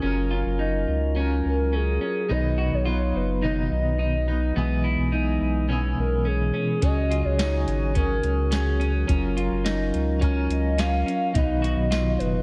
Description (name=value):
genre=dream pop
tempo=106 BPM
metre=4/4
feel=straight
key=unclear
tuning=A4 = 442 Hz
part: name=clean electric guitar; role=accompaniment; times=0.0-12.4 s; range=Cb3 to Cb5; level=-33 LUFS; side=equal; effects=tremolo, subtle chorus
part: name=mellow tonewheel organ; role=sustained chords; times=0.0-12.4 s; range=Db3 to Bb4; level=-32 LUFS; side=equal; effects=slow rotary speaker
part: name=semi-hollow electric guitar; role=arpeggios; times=0.0-12.4 s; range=B3 to Gb4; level=-32 LUFS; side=equal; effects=lush chorus, analog delay
part: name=saturated sub bass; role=bass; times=0.0-12.4 s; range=Gb1 to Db2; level=-27 LUFS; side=equal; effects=none
part: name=hollow clarinet-like synth lead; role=melody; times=1.5-12.4 s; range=Ab4 to F5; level=-32 LUFS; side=equal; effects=chorus, analog delay
part: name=soft vintage rhythm box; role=drums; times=6.8-12.3 s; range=hi-hat, kick drum, snare drum, tambourine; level=-28 LUFS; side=equal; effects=none
room=light reverb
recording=none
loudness=-24 LUFS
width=mono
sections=0.0-12.4 A section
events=none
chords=0.0 Gbmaj7; 2.3 Cb; 4.6 E/B; 6.8 Dbsus4; 9.1 Gbmaj7; 11.4 Cb